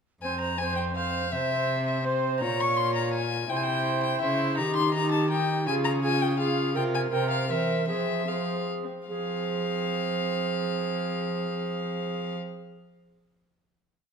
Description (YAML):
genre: classical, renaissance-style consort dance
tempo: 143-167 BPM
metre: 3/4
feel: straight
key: F harmonic minor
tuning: A4 = 440 Hz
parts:
  - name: warm violin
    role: melody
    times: 0.2-12.4 s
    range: C5 to Db6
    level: -30 LUFS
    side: left 5 dB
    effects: none
  - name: bass recorder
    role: second line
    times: 0.2-12.4 s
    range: G4 to Db5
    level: -31 LUFS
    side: right 4 dB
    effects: none
  - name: warm viola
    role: accompaniment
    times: 0.2-12.4 s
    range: C4 to F4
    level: -33 LUFS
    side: left 1 dB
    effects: none
  - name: rich cello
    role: bass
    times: 0.2-12.4 s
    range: F2 to F3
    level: -30 LUFS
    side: right 1 dB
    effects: none
room: wet recital hall reverb, RT60 1.4 s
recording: none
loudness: -25 LUFS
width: side -6 dB against mid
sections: 0.2-9.1 A section; 9.1-11.6 final chord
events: slowing down 6.2-9.1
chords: 0.2 F5; 1.3 C; 2.4 Bbm; 3.5 C; 4.6 Eb; 5.7 Db; 6.8 C7sus4; 7.1 C7; 7.9 Fm